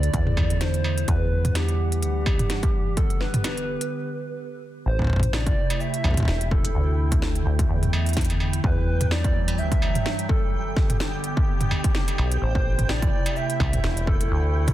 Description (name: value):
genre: IDM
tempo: 127 BPM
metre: 4/4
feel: swing 56% on 16ths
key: A dorian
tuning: A4 = 442 Hz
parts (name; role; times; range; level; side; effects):
- warbly nostalgic lead; melody; 0.0-14.7 s; G4 to E5; -31 LUFS; right 1 dB; chorus, digital delay
- warbly tape-like pad; sustained chords; 0.0-14.7 s; C3 to F#5; -31 LUFS; right 1 dB; chorus, built-in reverb
- deep acid bass; bass; 0.0-14.7 s; E1 to G2; -24 LUFS; equal; tube saturation
- industrial drum kit; drums; 0.0-14.7 s; cabasa, hi-hat, snare drum, struck metal, toms; -28 LUFS; equal; none
- electronic kick drum; drums; 0.1-14.7 s; none; -23 LUFS; equal; distortion
- flickering grainy texture; texture; 5.2-14.7 s; G5; -36 LUFS; right 3 dB; built-in reverb, sidechain pumping
room: digital ambience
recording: dense, heavily limited modern master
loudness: -21 LUFS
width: side -14 dB against mid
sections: 0.0-4.9 A section; 4.9-14.7 B section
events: break 3.9-4.9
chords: 0.0 Dsus2; 1.1 Emadd9; 3.0 G; 4.9 Am; 6.8 Dsus2; 8.6 Emadd9; 10.5 G; 12.4 Am